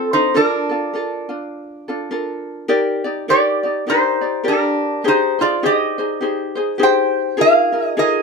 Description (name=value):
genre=hawaiian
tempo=102 BPM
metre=4/4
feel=swing 60% on 8ths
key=Eb major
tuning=A4 = 440 Hz
part: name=metal-body resonator slide guitar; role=melody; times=0.0-8.2 s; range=C4 to G5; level=-16 LUFS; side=equal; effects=none
part: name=ukulele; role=accompaniment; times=0.0-8.2 s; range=C4 to D5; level=-20 LUFS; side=left 1 dB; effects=none
room=light reverb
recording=close, detailed microphones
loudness=-15 LUFS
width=side -4 dB against mid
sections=0.0-2.7 A section; 2.7-8.2 B section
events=none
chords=0.4 Bbmaj7; 2.7 Ebmaj7; 5.0 Abmaj7; 7.4 Bb7sus4